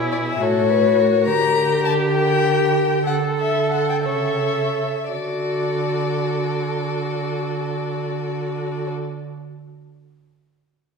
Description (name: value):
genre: quick classical-period movement for string quartet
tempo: 55-71 BPM (dotted quarters)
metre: 6/8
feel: rubato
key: D major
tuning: A4 = 440 Hz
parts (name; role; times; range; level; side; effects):
- warm violin; second line; 0.0-8.9 s; G#4 to C#5; -26 LUFS; left 3 dB; none
- rich viola; accompaniment; 0.0-8.9 s; E4 to A4; -23 LUFS; right 1 dB; none
- warm cello; bass; 0.0-8.9 s; A2 to D3; -25 LUFS; right 4 dB; none
- warm violin; melody; 0.1-8.9 s; C#5 to Bb5; -23 LUFS; left 8 dB; none
room: wet recital hall reverb, RT60 1.8 s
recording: recorded in a church or concert hall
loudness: -18 LUFS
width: side -5 dB against mid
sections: 0.0-5.1 A section; 5.1-9.4 B section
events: slowing down 0.4-5.1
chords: 0.4 A; 1.3 Gm/D; 3.1 A/D; 5.1 D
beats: 0.41 | 1.27 2.14 | 3.06 4.04 | 5.11 6.17 | 7.23 8.28